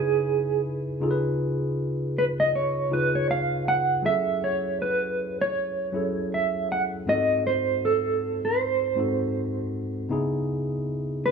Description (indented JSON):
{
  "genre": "soul",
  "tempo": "79 BPM",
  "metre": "4/4",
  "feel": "swing 58% on 16ths",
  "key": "C# minor",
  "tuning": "A4 = 441 Hz",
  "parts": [
    { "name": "mellow electric guitar", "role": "melody", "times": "0.0-11.3 s", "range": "G#4 to F#5", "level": "-24 LUFS", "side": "right 3 dB", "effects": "tremolo" },
    { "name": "tine electric piano", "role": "accompaniment", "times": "0.0-11.3 s", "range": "G#2 to B4", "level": "-28 LUFS", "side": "left 1 dB", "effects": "none" }
  ],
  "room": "moderate plate reverb, RT60 3.4 s",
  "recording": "small room ambience",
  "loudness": "-23 LUFS",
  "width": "side -6 dB against mid",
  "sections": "0.0-11.3 A section",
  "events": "none",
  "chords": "0.0 C#m7; 1.0 C#7; 4.0 F#m7; 7.1 G#7b9; 10.1 C#m7"
}